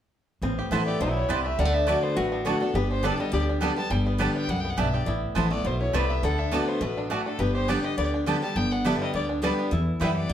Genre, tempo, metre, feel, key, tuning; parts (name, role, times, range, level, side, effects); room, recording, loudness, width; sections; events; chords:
bluegrass; 207 BPM; 4/4; swing 53% on 8ths; G major; A4 = 440 Hz
bluegrass banjo; melody; 0.4-10.1 s; G3 to G4; -34 LUFS; right 1 dB; plate reverb
lap resonator guitar; second line; 0.4-10.3 s; C4 to B4; -32 LUFS; left 2 dB
picked steel-string acoustic guitar; accompaniment; 0.4-10.3 s; E2 to G4; -28 LUFS; left 1 dB
upright bass; bass; 0.4-10.3 s; G1 to F#2; -28 LUFS; equal
mandolin; stabs; 0.7-10.1 s; B3 to A5; -30 LUFS; right 6 dB
clear fiddle; melody; 0.9-10.3 s; D4 to A5; -31 LUFS; left 2 dB; plate reverb
wet studio reverb, RT60 0.6 s; heard from further back in the room; -23 LUFS; side -10 dB against mid
0.4-9.7 A section
0.4 Amadd9; 1.6 D6; 2.8 Gadd9; 5.1 Amadd9; 6.2 D6; 7.4 Gadd9; 9.7 Em